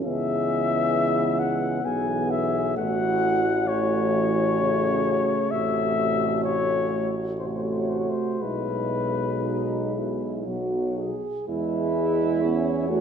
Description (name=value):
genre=classical, hymn-like piece for brass band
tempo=58-68 BPM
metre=3/4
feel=rubato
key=E major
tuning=A4 = 439 Hz
part: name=mellow flugelhorn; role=melody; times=0.0-13.0 s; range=B4 to G#5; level=-27 LUFS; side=left 6 dB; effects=none
part: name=mellow French horn section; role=second line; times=0.0-13.0 s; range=D#4 to G#4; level=-29 LUFS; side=right 4 dB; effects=none
part: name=mellow euphonium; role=accompaniment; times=0.0-13.0 s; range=F#3 to B3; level=-30 LUFS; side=left 1 dB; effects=none
part: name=mellow trombone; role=accompaniment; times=0.0-13.0 s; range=B2 to C#4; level=-31 LUFS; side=right 4 dB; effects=none
part: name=clear tuba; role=bass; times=0.0-13.0 s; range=A1 to E2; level=-29 LUFS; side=equal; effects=none
room=moderate concert hall reverb, RT60 2.3 s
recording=minimal, uncompressed stereo recording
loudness=-22 LUFS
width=side -7 dB against mid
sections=0.0-11.5 A section; 11.5-13.0 B section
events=none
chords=0.1 C#m7; 2.8 F#m7/A; 5.5 F#m7b5/A; 8.4 E/B; 10.5 B5; 11.5 E